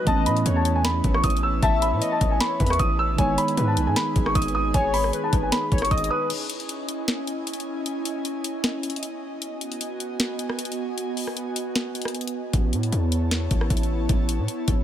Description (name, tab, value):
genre	hip hop, trap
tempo	154 BPM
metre	4/4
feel	half-time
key	C# minor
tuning	A4 = 440 Hz
part	dark grand piano	melody	0.0-6.3 s	G#5 to E6	-26 LUFS	equal	tape echo
part	warm velvety synth lead	second line	0.0-6.3 s	B4 to E5	-30 LUFS	left 4 dB	chorus, tape echo
part	mellow tine electric piano	accompaniment	0.0-6.3 s	D#3 to D#4	-28 LUFS	right 6 dB	low-pass filter
part	airy breathy pad	sustained chords	0.0-14.8 s	B3 to A5	-30 LUFS	right 1 dB	chorus
part	hard-hitting 808-style bass	bass	0.1-6.1, 12.5-14.8 s	G#1 to A2	-24 LUFS	equal	none
part	trap drum kit	drums	0.1-14.8 s	crash cymbal, hi-hat, kick drum, rim click, snare drum	-25 LUFS	equal	none
room	digital ambience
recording	none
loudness	-21 LUFS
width	side -10 dB against mid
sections	0.0-6.3 A section; 6.3-14.8 B section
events	break 6.3-12.5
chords	0.1 Aadd9; 3.2 G#m; 6.3 C#madd9; 9.4 B6; 12.5 Aadd9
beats	| 0.07 0.46 0.85 1.24 | 1.63 2.02 2.40 2.79 | 3.18 3.57 3.96 4.35 | 4.74 5.13 5.52 5.91 | 6.30 6.69 7.08 7.47 | 7.86 8.25 8.64 9.03 | 9.42 9.81 10.20 10.59 | 10.98 11.37 11.76 12.14 | 12.54 12.92 13.31 13.70 | 14.09 14.48